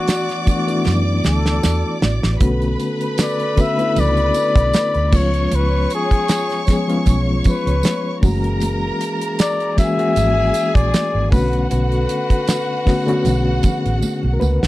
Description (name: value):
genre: lush 1970s-style soul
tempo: 78 BPM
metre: 4/4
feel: swing 54% on 16ths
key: B dorian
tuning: A4 = 440 Hz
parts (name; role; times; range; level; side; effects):
- breathy flugelhorn; melody; 0.0-14.0 s; F#4 to E5; -21 LUFS; left 3 dB; none
- warm studio violin section; second line; 0.0-14.7 s; F#4 to D6; -26 LUFS; right 1 dB; none
- reed electric piano; accompaniment; 0.0-14.7 s; D3 to B4; -21 LUFS; left 2 dB; fast tremolo
- mellow French horn section; sustained chords; 0.0-14.6 s; B2 to A4; -30 LUFS; right 3 dB; none
- damped 70s drum kit; drums; 0.1-14.7 s; crash cymbal, hi-hat, kick drum, snare drum; -17 LUFS; right 1 dB; none
- congas; percussion; 0.1-14.6 s; none; -27 LUFS; right 4 dB; none
- tambourine; percussion; 0.1-14.6 s; none; -35 LUFS; right 11 dB; none
- vintage muted fingered electric bass; bass; 0.9-14.7 s; F#1 to F#2; -19 LUFS; right 1 dB; none
room: little or no reverb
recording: dry, close 1970s-style studio recording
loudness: -15 LUFS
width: side -16 dB against mid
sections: 0.0-14.7 A section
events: drum fill 0.9-2.4, 14.0-14.7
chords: 0.0 D69; 2.4 Bm7; 5.1 C#7; 8.2 F#9; 11.3 Bm7